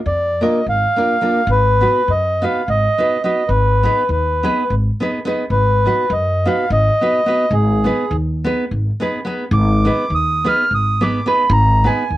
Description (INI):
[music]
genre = balkan folk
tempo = 209 BPM (eighths)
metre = 7/8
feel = straight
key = Ab dorian sharp4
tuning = A4 = 442 Hz
[part]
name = mellow accordion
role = melody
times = 0.1-12.2 s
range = Ab4 to F6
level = -16 LUFS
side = right 1 dB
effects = none
[part]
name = upright bass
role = bass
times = 0.1-12.2 s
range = Ab1 to F#2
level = -17 LUFS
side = equal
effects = tube saturation
[part]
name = nylon-string guitar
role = accompaniment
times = 0.4-12.0 s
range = Bb3 to B4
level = -20 LUFS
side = right 1 dB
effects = none
[sound]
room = light reverb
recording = worn, warbling old tape, cassette tape, warbly pitch drift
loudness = -14 LUFS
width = side -15 dB against mid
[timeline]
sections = 0.0-9.5 A section; 9.5-12.2 B section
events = none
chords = 0.0 Bb; 1.5 B/Ab; 3.5 Abm; 5.5 B/Ab; 7.5 Abm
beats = 0.02 0.31 0.60 0.89 1.18 | 1.47 1.76 2.05 2.33 2.62 2.91 3.20 | 3.49 3.78 4.06 4.35 4.64 4.93 5.21 | 5.50 5.79 6.08 6.36 6.65 6.94 7.22 | 7.51 7.80 8.08 8.37 8.65 8.94 9.22 | 9.51 9.79 10.08 10.36 10.65 10.93 11.22 | 11.50 11.79 12.07